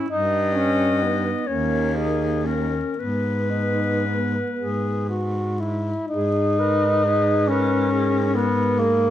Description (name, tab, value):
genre	classical, lyrical piece for single-reed quartet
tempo	37-47 BPM (dotted quarters)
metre	6/8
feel	rubato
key	G# minor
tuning	A4 = 436 Hz
part	clear alto saxophone	second line	0.0-9.1 s	A#3 to B4	-27 LUFS	right 5 dB	none
part	mellow tenor saxophone	accompaniment	0.0-9.1 s	A#3 to G#4	-23 LUFS	left 2 dB	none
part	clear clarinet	melody	0.1-9.1 s	G#4 to D#5	-27 LUFS	left 5 dB	none
part	clear baritone saxophone	bass	0.1-9.1 s	D#2 to G#2	-25 LUFS	right 1 dB	none
room	light reverb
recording	close, detailed microphones, vinyl crackle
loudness	-19 LUFS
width	side -12 dB against mid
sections	0.0-6.1 A section; 6.1-9.1 A section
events	none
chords	0.1 D#7/G; 1.5 D#5; 3.0 G#m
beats	| 0.10 1.47 | 2.98 4.57 | 6.11 7.49 | 8.80